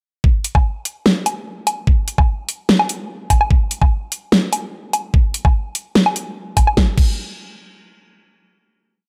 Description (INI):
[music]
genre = dubstep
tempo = 147 BPM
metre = 4/4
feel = half-time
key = none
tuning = none
[part]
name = electronic kick drum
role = drums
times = 0.2-7.1 s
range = none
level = -16 LUFS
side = equal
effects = small room ambience
[part]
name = dubstep drum kit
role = drums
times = 0.4-7.1 s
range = crash cymbal, hi-hat, snare drum, woodblock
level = -19 LUFS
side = equal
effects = small room ambience
[sound]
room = little or no reverb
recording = none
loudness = -18 LUFS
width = mono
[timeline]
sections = 0.2-6.8 drop; 6.8-9.1 final hit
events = drop 0.2-6.8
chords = none